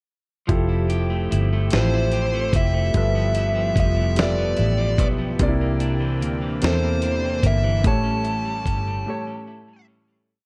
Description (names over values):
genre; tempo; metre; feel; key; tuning
slow six-eight R&B; 49 BPM (dotted quarters); 6/8; straight; F major; A4 = 440 Hz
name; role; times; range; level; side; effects
electric guitar at the edge of break-up; second line; 0.5-10.5 s; G2 to G4; -32 LUFS; equal; none
warm concert grand piano; accompaniment; 0.5-10.3 s; A2 to E5; -30 LUFS; equal; none
lush unison pad; sustained chords; 0.5-10.3 s; E3 to G4; -36 LUFS; equal; chorus
vintage muted fingered electric bass; bass; 0.5-9.0 s; F1 to E2; -25 LUFS; equal; none
dusty soul sampler-style drum kit; drums; 0.5-8.9 s; hi-hat, kick drum, snare drum; -25 LUFS; equal; none
fuzz lead guitar; melody; 1.7-9.9 s; C5 to A5; -28 LUFS; equal; distortion
room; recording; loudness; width
little or no reverb; dark, warm production; -21 LUFS; mono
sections
0.5-10.3 chorus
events
fade-out 7.8-10.3; break 9.1-10.3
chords
0.5 Fmaj9; 2.9 G13; 5.4 C9; 7.8 A7